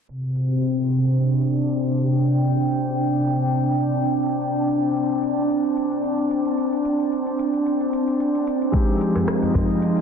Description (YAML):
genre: organic downtempo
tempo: 111 BPM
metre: 4/4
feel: swing 54% on 16ths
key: unclear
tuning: A4 = 439 Hz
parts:
  - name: airy breathy pad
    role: sustained chords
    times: 0.1-10.0 s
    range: C3 to G5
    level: -20 LUFS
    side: equal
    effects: chorus, sidechain pumping
  - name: electronic shaker and rim click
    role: drums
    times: 0.1-10.0 s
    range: none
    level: -33 LUFS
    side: right 1 dB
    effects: overdrive
  - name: felt-muted upright piano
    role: accompaniment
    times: 8.7-10.0 s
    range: Ab3 to G4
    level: -23 LUFS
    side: left 3 dB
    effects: sidechain pumping, tape echo
  - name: electronic kick drum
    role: drums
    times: 8.7-9.7 s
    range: none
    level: -21 LUFS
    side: equal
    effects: overdrive
  - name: djembe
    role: percussion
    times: 9.2-9.7 s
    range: none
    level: -27 LUFS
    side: equal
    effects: none
room: moderate huge ambient reverb, RT60 6.6 s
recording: dense, heavily limited modern master, low-pass filter, lossy compression artefacts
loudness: -19 LUFS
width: side -7 dB against mid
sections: 0.1-10.0 A section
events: filter sweep 0.1-10.0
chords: 0.1 Csus2; 8.7 Fm7